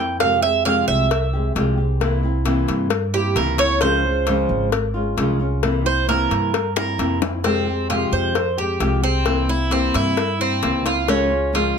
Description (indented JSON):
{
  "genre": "latin, Cuban son and guajira",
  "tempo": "132 BPM",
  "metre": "4/4",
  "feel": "straight",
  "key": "F harmonic minor",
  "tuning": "A4 = 440 Hz",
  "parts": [
    { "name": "flamenco guitar", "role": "accompaniment", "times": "0.0-11.8 s", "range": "C3 to G4", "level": "-22 LUFS", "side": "left 2 dB", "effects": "none" },
    { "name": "Cuban tres", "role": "arpeggios", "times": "0.0-11.8 s", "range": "C4 to G5", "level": "-21 LUFS", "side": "right 4 dB", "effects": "none" },
    { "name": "upright bass", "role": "bass", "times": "0.0-11.7 s", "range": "Ab1 to G2", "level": "-23 LUFS", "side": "right 1 dB", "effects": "none" },
    { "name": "cowbell and bongos", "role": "percussion", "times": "0.2-11.8 s", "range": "none", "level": "-25 LUFS", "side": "left 9 dB", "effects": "none" }
  ],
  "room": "light reverb",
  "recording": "close, detailed microphones",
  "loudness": "-17 LUFS",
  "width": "side -6 dB against mid",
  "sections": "0.0-7.4 A section; 7.4-11.8 B section",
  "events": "Cuban tres solo 0.0-7.4; drum fill 6.8-7.4",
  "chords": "0.2 Fmadd9; 2.0 C7; 3.8 Db; 5.6 C7; 7.4 Fmadd9; 9.3 C7; 11.1 Db",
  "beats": "| 0.19 0.65 1.10 1.55 | 2.00 2.46 2.91 3.36 | 3.82 4.27 4.72 5.18 | 5.63 6.08 6.54 6.99 | 7.44 7.90 8.35 8.81 | 9.26 9.72 10.17 10.63 | 11.08 11.54"
}